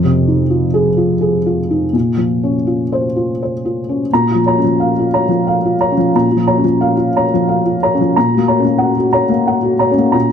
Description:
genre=neoclassical minimalist piano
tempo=83-91 BPM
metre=3/4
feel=rubato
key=Bb minor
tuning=A4 = 442 Hz
part: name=felt-muted upright piano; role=solo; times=0.0-10.3 s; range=F2 to Bb5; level=-12 LUFS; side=equal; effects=none
room=light reverb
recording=close, detailed microphones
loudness=-12 LUFS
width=side -8 dB against mid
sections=0.0-4.1 A section; 4.1-10.3 A section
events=none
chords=0.0 Fm7; 1.9 Bbmadd9; 4.1 Bbm; 8.2 Gb/Bb

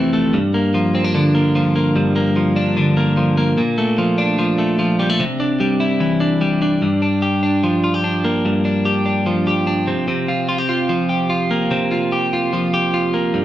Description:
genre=indie pop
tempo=148 BPM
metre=4/4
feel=straight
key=C mixolydian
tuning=A4 = 440 Hz
part: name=twelve-string electric guitar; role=solo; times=0.0-13.4 s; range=F2 to G4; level=-15 LUFS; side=equal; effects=none
room=wet large studio reverb, RT60 1.0 s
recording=band playing live in one room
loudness=-15 LUFS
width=side -13 dB against mid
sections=0.0-6.8 A section; 6.8-13.4 B section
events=none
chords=0.3 Gm7; 3.6 Bbmaj7; 5.2 Cadd9; 6.8 Gm7; 9.9 C7sus4

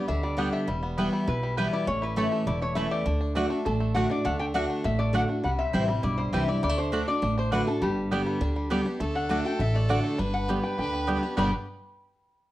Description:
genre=bluegrass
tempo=202 BPM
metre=4/4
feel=straight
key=G major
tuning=A4 = 437 Hz
part: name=bluegrass banjo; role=melody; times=0.0-11.5 s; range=G3 to G4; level=-36 LUFS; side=equal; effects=none
part: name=lap resonator guitar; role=melody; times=0.0-11.5 s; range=G4 to B5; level=-32 LUFS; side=left 2 dB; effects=none
part: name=picked steel-string acoustic guitar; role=accompaniment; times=0.0-11.5 s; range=E2 to G4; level=-28 LUFS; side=equal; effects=none
part: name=upright bass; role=bass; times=0.1-11.5 s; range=E1 to D2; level=-30 LUFS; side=equal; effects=none
part: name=mandolin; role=stabs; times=0.4-11.5 s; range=A3 to A5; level=-32 LUFS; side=right 3 dB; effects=none
part: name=clear fiddle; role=second line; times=9.0-11.5 s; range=A4 to B4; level=-34 LUFS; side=equal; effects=none
room=moderate studio reverb, RT60 0.7 s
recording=worn, warbling old tape, cassette tape, warbly pitch drift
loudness=-24 LUFS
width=side -15 dB against mid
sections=0.0-9.0 A section; 9.0-11.4 B section; 11.4-12.5 C section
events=none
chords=0.0 G; 0.7 Em; 1.9 A; 3.1 D; 5.4 C; 6.6 D; 7.8 G; 9.0 D; 10.2 G

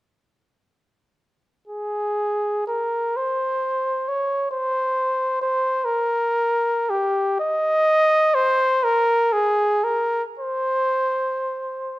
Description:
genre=classical, free, expressive piece for unaccompanied trumpet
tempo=41 BPM (dotted quarters)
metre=6/8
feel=uneven beats, rubato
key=unclear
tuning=A4 = 441 Hz
part: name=mellow trumpet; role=solo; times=1.7-12.0 s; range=G4 to Eb5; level=-19 LUFS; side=equal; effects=none
room=moderate recital hall reverb, RT60 1.9 s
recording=close, detailed microphones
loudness=-19 LUFS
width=side -17 dB against mid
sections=1.7-12.0 A section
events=none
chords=none

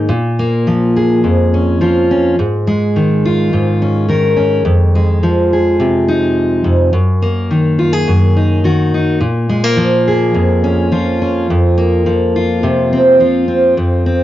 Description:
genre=folk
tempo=105 BPM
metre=4/4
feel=straight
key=Bb minor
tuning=A4 = 441 Hz
part: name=fingerpicked steel-string acoustic guitar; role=solo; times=0.0-14.2 s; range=F2 to Bb4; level=-11 LUFS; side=equal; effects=cassette tape
room=moderate studio reverb, RT60 0.7 s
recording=home recording on cassette, nothing above 7.5 kHz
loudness=-11 LUFS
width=side -13 dB against mid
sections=0.0-13.8 A section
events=none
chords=0.1 Bbm; 2.4 Absus4; 4.7 Fm7; 6.9 Ebm/Gb; 9.2 Bbm; 11.5 Fsus4

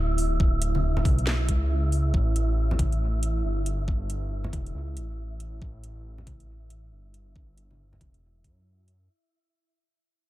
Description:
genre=deep dubstep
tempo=138 BPM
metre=4/4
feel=swing 61% on 16ths, half-time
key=unclear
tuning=A4 = 440 Hz
part: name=dark detuned saw bass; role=bass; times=0.0-9.1 s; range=D1 to F#2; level=-27 LUFS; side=equal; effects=none
part: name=wind-like tuned noise texture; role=texture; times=0.0-9.1 s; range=E4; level=-34 LUFS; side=right 3 dB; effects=built-in reverb
part: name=garage drum kit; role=drums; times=0.2-9.0 s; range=hi-hat, snare drum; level=-34 LUFS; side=equal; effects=none
part: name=electronic kick drum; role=drums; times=0.4-8.5 s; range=none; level=-25 LUFS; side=equal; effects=none
part: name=congas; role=percussion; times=0.7-8.1 s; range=none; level=-33 LUFS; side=left 1 dB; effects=none
room=little or no reverb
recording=none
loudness=-24 LUFS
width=side -16 dB against mid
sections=0.0-9.1 A section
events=fade-out 0.0-9.1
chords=0.0 E5; 2.1 A5

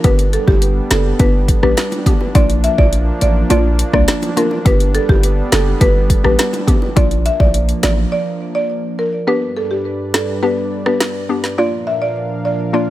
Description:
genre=dancehall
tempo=104 BPM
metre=4/4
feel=straight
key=unclear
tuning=A4 = 438 Hz
part: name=buzzing marimba with medium mallets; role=melody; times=0.0-12.9 s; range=G4 to E5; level=-19 LUFS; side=equal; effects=digital delay
part: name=hollow square pluck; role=accompaniment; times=0.0-12.9 s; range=Bb3 to G4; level=-20 LUFS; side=left 2 dB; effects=chorus
part: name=warm analog pad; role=sustained chords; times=0.0-12.9 s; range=G2 to F5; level=-24 LUFS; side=right 1 dB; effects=chorus, sidechain pumping
part: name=hard-hitting 808-style bass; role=bass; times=0.0-8.1 s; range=F#1 to C2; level=-16 LUFS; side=equal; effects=none
part: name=afro-pop drum kit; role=drums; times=0.0-11.6 s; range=hi-hat, kick drum, rim click, snare drum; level=-15 LUFS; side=equal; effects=none
part: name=bongos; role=percussion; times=0.0-8.0 s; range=none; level=-28 LUFS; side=right 2 dB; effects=none
room=little or no reverb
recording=none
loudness=-13 LUFS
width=side -15 dB against mid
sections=0.0-9.3 A section; 9.3-12.9 B section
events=break 8.1-9.3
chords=0.0 G; 2.4 Bb; 4.7 G; 7.0 Bb; 9.3 G; 11.6 Bb

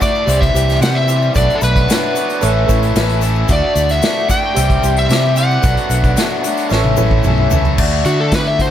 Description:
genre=folk rock and heartland rock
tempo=112 BPM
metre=4/4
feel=straight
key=D major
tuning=A4 = 440 Hz
part: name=overdriven slide guitar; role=melody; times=0.0-8.7 s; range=F#4 to G5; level=-19 LUFS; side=equal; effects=none
part: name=picked steel-string acoustic guitar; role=accompaniment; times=0.0-8.7 s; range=B2 to B4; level=-22 LUFS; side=left 10 dB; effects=none
part: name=raw garage guitar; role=riff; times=0.0-8.7 s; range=A2 to A4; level=-20 LUFS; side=right 1 dB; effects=overdrive
part: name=unplugged drum kit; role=drums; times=0.0-8.7 s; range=crash cymbal, hi-hat, kick drum, snare drum, toms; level=-18 LUFS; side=equal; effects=none
part: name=egg shaker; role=percussion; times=0.0-7.7 s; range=none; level=-32 LUFS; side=left 12 dB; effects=none
part: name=bright reed electric piano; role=accompaniment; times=0.3-7.6 s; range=F#4 to G5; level=-25 LUFS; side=right 10 dB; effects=fast tremolo
part: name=fingered electric bass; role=bass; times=0.3-8.7 s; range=A1 to D3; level=-16 LUFS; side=equal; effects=none
room=little or no reverb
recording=none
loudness=-12 LUFS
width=side -10 dB against mid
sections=0.0-7.8 A section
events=drum fill 6.7-7.8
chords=0.3 C; 1.4 Bm7; 2.4 Aadd9; 3.5 Dadd9; 4.6 C; 5.6 Bm7; 6.7 Aadd9; 7.8 Dadd9

